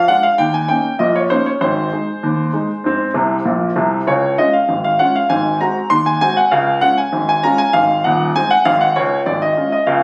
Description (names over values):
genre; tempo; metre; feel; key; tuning
ragtime piano; 98 BPM; 2/4; straight; Db major; A4 = 440 Hz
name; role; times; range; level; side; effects
clear grand piano; solo; 0.0-10.0 s; Eb1 to C6; -16 LUFS; equal; none
room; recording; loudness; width
moderate club reverb, RT60 0.6 s; recorded on a phone in the room, studio reverb, compression; -16 LUFS; mono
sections
0.0-10.0 A section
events
grand piano fill 3.2-4.1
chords
0.4 Eb5; 1.6 Ab; 4.1 Db; 5.3 Ab7; 6.5 Db; 7.7 Ab; 9.0 Db